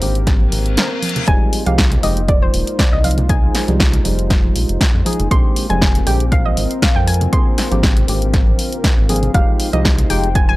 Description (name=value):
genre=deep house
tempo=119 BPM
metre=4/4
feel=swing 54% on 16ths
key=F dorian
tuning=A4 = 440 Hz
part: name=soft round pluck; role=melody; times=0.0-10.6 s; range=C5 to C6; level=-22 LUFS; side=equal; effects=chorus, analog delay
part: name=warm analog pad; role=sustained chords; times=0.0-10.6 s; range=Bb3 to C5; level=-29 LUFS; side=right 1 dB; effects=chorus, sidechain pumping
part: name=percussive organ stab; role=stabs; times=0.0-10.3 s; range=D3 to Bb4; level=-24 LUFS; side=equal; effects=chorus, analog delay
part: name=round analog bass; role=bass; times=0.0-10.6 s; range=Eb1 to F2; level=-18 LUFS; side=equal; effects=tube saturation, sidechain pumping
part: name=deep house drum kit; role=drums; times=0.0-10.5 s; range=hi-hat, snare drum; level=-20 LUFS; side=equal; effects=none
part: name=warbly tape-like pad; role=texture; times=0.0-10.6 s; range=Ab3 to Bb5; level=-28 LUFS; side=left 1 dB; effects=chorus, built-in reverb, sidechain pumping
part: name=electronic kick drum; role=drums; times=0.3-10.5 s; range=none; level=-15 LUFS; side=equal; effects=none
part: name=reverse cymbal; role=sound effects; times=0.5-1.3 s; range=none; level=-26 LUFS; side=left 4 dB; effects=none
part: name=congas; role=percussion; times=0.4-10.6 s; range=none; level=-25 LUFS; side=right 1 dB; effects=none
room=digital ambience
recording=dry, gritty hardware recording, transformer saturation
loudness=-13 LUFS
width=side -18 dB against mid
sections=0.0-10.6 A section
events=reverse cymbal 0.5-1.3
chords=0.0 Abmaj9#11; 1.3 Fm9; 5.3 Bb13; 7.3 Abmaj9#11; 9.3 Fm9